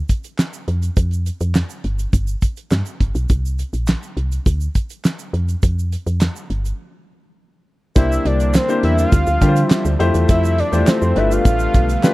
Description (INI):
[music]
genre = early-eighties boogie funk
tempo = 103 BPM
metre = 4/4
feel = straight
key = unclear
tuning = A4 = 439 Hz
[part]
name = woody FM bass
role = bass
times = 0.0-12.0 s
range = G1 to D3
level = -18 LUFS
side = equal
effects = none
[part]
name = damped 70s drum kit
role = drums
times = 0.1-12.1 s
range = handclaps, hi-hat, kick drum, snare drum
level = -16 LUFS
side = equal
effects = none
[part]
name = egg shaker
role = percussion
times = 0.1-12.1 s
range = none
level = -37 LUFS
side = right 10 dB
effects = none
[part]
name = fat analog lead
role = melody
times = 8.0-12.1 s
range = C5 to F5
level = -21 LUFS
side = equal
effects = none
[part]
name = warm concert grand piano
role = accompaniment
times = 8.0-12.1 s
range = G3 to C5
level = -20 LUFS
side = left 3 dB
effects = none
[part]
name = lush unison pad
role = sustained chords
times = 8.0-12.1 s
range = C3 to E5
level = -26 LUFS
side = right 1 dB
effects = chorus
[sound]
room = studio reverb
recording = dry, close 1970s-style studio recording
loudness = -16 LUFS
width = side -19 dB against mid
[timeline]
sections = 0.0-8.0 A section; 8.0-12.1 B section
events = break 6.8-8.0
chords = 0.0 N.C.; 3.3 Bbsus2; 4.5 N.C.; 8.0 C9; 9.1 Dm7; 10.0 Fmaj9; 11.2 G9